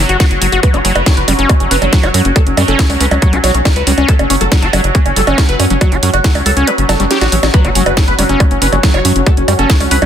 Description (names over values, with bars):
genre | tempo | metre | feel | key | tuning
psychedelic trance | 139 BPM | 4/4 | straight | F# phrygian | A4 = 440 Hz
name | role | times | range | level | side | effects
bubbling stepped-filter texture | sustained chords | 0.0-10.1 s | F#3 | -19 LUFS | equal | chorus, built-in reverb, vintage 12-bit sampler grit, sidechain pumping
tight sequencer bass | bass | 0.0-10.1 s | F#1 to F#2 | -15 LUFS | equal | none
overdriven acid bass | riff | 0.1-10.1 s | F#3 to G4 | -18 LUFS | moving between left 5 dB and right 5 dB | distortion, auto-pan, sidechain pumping, ping-pong delay
techno drum kit | drums | 0.1-10.1 s | bongos, hi-hat, snare drum | -16 LUFS | right 2 dB | overdrive
electronic kick drum | drums | 0.2-9.8 s | none | -10 LUFS | equal | overdrive
wide unison lead | melody | 0.6-10.1 s | C#4 to C#5 | -17 LUFS | equal | phaser, sidechain pumping, digital delay
impact | sound effects | 7.5-9.3 s | none | -25 LUFS | equal | none
airy breathy pad | texture | 7.5-10.1 s | F#4 to F#5 | -25 LUFS | right 3 dB | chorus, phaser, sidechain pumping
vowel-sweep wobble bass | second line | 8.1-8.9 s | none | barely audible | none | none
room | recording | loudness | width
light reverb, digital ambience | dense, heavily limited modern master | -9 LUFS | side -9 dB against mid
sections
0.0-7.5 A section; 7.5-10.1 B section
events
kick drops out 6.7-7.5; drum fill 6.9-7.5; drop 7.5-10.1; impact 7.5-9.3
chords
0.0 F#5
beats
0.20 | 0.63 1.06 1.50 1.93 | 2.36 2.79 3.22 3.65 | 4.08 4.52 4.95 5.38 | 5.81 6.24 6.67 7.11 | 7.54 7.97 8.40 8.83 | 9.27 9.70